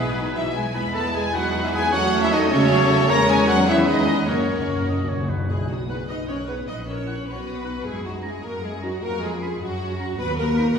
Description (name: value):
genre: quick classical-period movement for symphony orchestra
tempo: 102 BPM (dotted quarters)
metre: 6/8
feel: straight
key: B major from 3.1 s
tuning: A4 = 443 Hz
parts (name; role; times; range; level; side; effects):
- rich studio violin section; melody; 0.0-10.7 s; B4 to F#6; -31 LUFS; left 1 dB; none
- clear studio violin section; second line; 0.0-10.8 s; C#4 to D#5; -31 LUFS; equal; none
- hollow flute section; second line; 0.0-10.8 s; C#4 to B5; -31 LUFS; left 2 dB; none
- mellow clarinet; second line; 0.0-10.6 s; B3 to B4; -31 LUFS; left 1 dB; none
- warm oboe; second line; 0.0-10.6 s; G#4 to B5; -30 LUFS; right 1 dB; none
- rich studio viola section; accompaniment; 0.0-10.8 s; E3 to D#5; -28 LUFS; equal; none
- mellow French horn section; sustained chords; 0.0-10.8 s; F#3 to A#4; -27 LUFS; left 1 dB; none
- warm trumpet section; stabs; 0.0-4.9 s; B4 to B5; -26 LUFS; left 1 dB; none
- rich studio cello section; bass; 0.0-10.8 s; B2 to D#4; -28 LUFS; right 2 dB; none
- rich symphonic double bass section; bass; 0.0-10.7 s; A#1 to F#2; -30 LUFS; right 1 dB; none
- timpani; percussion; 4.3-6.0 s; F#2 to B2; -28 LUFS; left 1 dB; none
room: wet recital hall reverb, RT60 1.4 s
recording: recorded in a church or concert hall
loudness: -20 LUFS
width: side -6 dB against mid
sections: 0.0-5.5 A section; 5.5-10.8 B section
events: timpani fill 4.3-5.5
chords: 0.2 B; 0.8 E; 1.9 F#m/E; 3.1 C#m/E; 4.3 F#; 5.5 B; 6.7 F#7/A#; 7.3 B; 7.9 F#; 9.0 C#7/E#; 9.6 F#; 10.2 B/D#